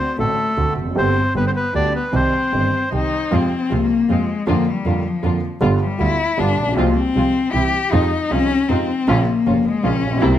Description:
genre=tango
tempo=156 BPM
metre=3/4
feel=rubato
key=C harmonic minor, F minor from 3.3 s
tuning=A4 = 440 Hz
part: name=bandoneon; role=melody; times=0.0-2.9 s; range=A4 to D5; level=-22 LUFS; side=equal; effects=tape echo
part: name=warm cello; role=second line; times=0.0-10.4 s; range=F3 to G4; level=-20 LUFS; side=left 5 dB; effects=none
part: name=warm baby grand piano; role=accompaniment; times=0.2-10.4 s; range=F1 to G4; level=-22 LUFS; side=right 2 dB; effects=none
part: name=dark double bass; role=bass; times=0.2-10.4 s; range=F1 to F2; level=-22 LUFS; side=right 2 dB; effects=none
part: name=muted studio string section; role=stabs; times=3.3-10.4 s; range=G3 to F4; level=-26 LUFS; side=right 1 dB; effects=none
room=moderate large studio reverb, RT60 1.4 s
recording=close, detailed microphones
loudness=-16 LUFS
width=side -11 dB against mid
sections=0.0-3.3 A section; 3.3-10.4 B section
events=cello solo 3.3-10.4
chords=0.0 D7; 1.0 Gsus4; 1.4 G; 2.1 Cm; 3.3 Fm; 4.5 Bb/F; 5.6 G7; 6.8 Fm/C; 7.5 C; 7.9 Fm7; 9.1 Bbm

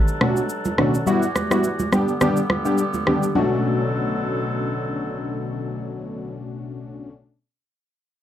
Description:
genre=afrobeats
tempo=105 BPM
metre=4/4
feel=swing 55% on 16ths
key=B minor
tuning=A4 = 441 Hz
part: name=warm woodwind section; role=sustained chords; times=0.0-6.4 s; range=E2 to A4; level=-28 LUFS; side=equal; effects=none
part: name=electronic shaker and rim click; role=drums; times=0.1-3.3 s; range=none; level=-22 LUFS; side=equal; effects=none
part: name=warm analog keys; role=accompaniment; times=0.2-7.1 s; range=B2 to G4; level=-22 LUFS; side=left 1 dB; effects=chorus
part: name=congas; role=percussion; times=0.2-3.6 s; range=none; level=-26 LUFS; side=right 3 dB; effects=none
room=light reverb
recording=dark, warm production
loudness=-19 LUFS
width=side -11 dB against mid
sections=0.0-3.4 A section; 3.4-5.6 B section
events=none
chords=0.0 Bm7; 1.1 Emadd9; 1.9 G; 3.4 Bm7

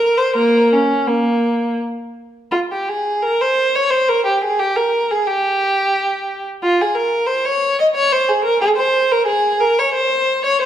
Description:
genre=classical, baroque-style suite movement for unaccompanied violin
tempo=79-92 BPM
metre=3/4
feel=rubato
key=unclear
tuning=A4 = 440 Hz
part: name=rich violin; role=solo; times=0.0-10.7 s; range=Bb3 to Eb5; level=-14 LUFS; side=equal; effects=none
room=wet recital hall reverb, RT60 1.4 s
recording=dark, warm production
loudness=-14 LUFS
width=side -10 dB against mid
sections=0.0-2.5 A section; 2.5-10.7 A section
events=none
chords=none

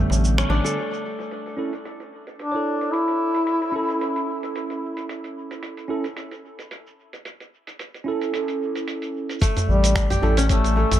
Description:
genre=organic downtempo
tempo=111 BPM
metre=4/4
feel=swing 55% on 16ths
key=A mixolydian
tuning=A4 = 440 Hz
part: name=tine electric piano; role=accompaniment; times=0.0-10.4 s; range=D3 to C#5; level=-28 LUFS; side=right 4 dB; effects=analog chorus, sidechain pumping, dub echo
part: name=kora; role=arpeggios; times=0.0-2.2, 9.4-11.0 s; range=A3 to A4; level=-27 LUFS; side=left 1 dB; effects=dub echo
part: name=round analog bass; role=bass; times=0.0-0.6, 9.7-11.0 s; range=A1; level=-20 LUFS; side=equal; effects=tube saturation, sidechain pumping
part: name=dusty soul sampler-style drum kit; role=drums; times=0.1-11.0 s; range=finger snaps, hi-hat, shaker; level=-32 LUFS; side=right 2 dB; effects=low-pass filter on snare, low-pass filter on perc, low-pass filter on hats, low-pass filter on room, dub echo
part: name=darbuka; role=percussion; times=0.1-0.6, 9.6-11.0 s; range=none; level=-28 LUFS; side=right 1 dB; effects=none
part: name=warm duduk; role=melody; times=2.4-4.8, 9.7-11.0 s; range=G3 to E4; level=-24 LUFS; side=left 2 dB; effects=dub echo
part: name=electronic kick drum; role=drums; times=9.4-10.6 s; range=none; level=-22 LUFS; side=equal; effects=none
room=moderate spring reverb, RT60 2.4 s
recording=echo-heavy mix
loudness=-21 LUFS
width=side -12 dB against mid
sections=0.8-9.4 A section; 9.4-11.0 B section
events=band accent 0.4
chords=0.0 Gadd9; 0.8 A

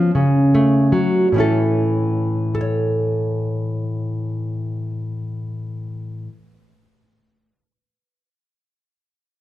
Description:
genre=folk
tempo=49 BPM (dotted quarters)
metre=6/8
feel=straight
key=A major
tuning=A4 = 441 Hz
part: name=nylon-string guitar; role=accompaniment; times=0.0-7.6 s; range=A2 to C#5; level=-17 LUFS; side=equal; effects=none
room=moderate large studio reverb, RT60 1.4 s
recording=none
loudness=-17 LUFS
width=side -14 dB against mid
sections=0.0-1.3 A section; 1.3-6.2 B section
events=slowing down 0.0-1.3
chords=0.1 F#m/C#; 1.3 A

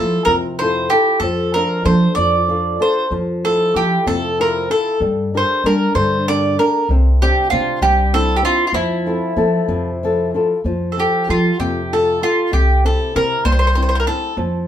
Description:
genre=italian folk, Italian serenade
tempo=64 BPM (dotted quarters)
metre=6/8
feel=rubato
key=F major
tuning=A4 = 440 Hz
part: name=mandolin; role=melody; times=0.0-14.4 s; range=E4 to D5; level=-17 LUFS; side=right 1 dB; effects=none
part: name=flamenco guitar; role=accompaniment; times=0.0-14.7 s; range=C3 to E5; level=-20 LUFS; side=left 2 dB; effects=none
part: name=upright bass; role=bass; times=0.0-14.7 s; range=C2 to G3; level=-19 LUFS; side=equal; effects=none
room=wet studio reverb, RT60 0.6 s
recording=band playing live in one room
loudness=-14 LUFS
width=side -10 dB against mid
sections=0.0-10.6 A section; 10.6-14.7 A section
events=none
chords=0.0 Fmaj7; 1.2 Dm/F; 3.1 Fmaj7; 5.0 Gm; 6.9 Cadd9; 8.7 Fmaj7; 10.6 Fadd9; 12.5 C

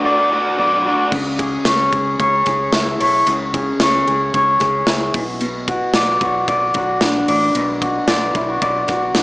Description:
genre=jangly indie pop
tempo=112 BPM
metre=4/4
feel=straight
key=unclear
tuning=A4 = 438 Hz
part: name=crunchy overdriven guitar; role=accompaniment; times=0.0-1.1 s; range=B2 to D5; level=-21 LUFS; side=right 1 dB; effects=ensemble chorus
part: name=electric guitar through a small old amp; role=arpeggios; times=0.0-9.2 s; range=B2 to D5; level=-16 LUFS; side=equal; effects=tape echo
part: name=vintage muted fingered electric bass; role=bass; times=1.1-9.2 s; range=A1 to C#2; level=-29 LUFS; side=equal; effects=none
part: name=big rock drum kit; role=drums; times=1.1-9.2 s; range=crash cymbal, hi-hat, kick drum, ride cymbal, snare drum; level=-21 LUFS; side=equal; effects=none
room=wet lush hall reverb, RT60 1.7 s, studio ambience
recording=dreamy mix soaked in reverb, small speaker sound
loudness=-14 LUFS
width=side -24 dB against mid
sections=0.0-1.1 A section; 1.1-9.2 B section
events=break 0.0-1.1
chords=0.0 Bm7; 1.1 C#m; 5.1 Bm

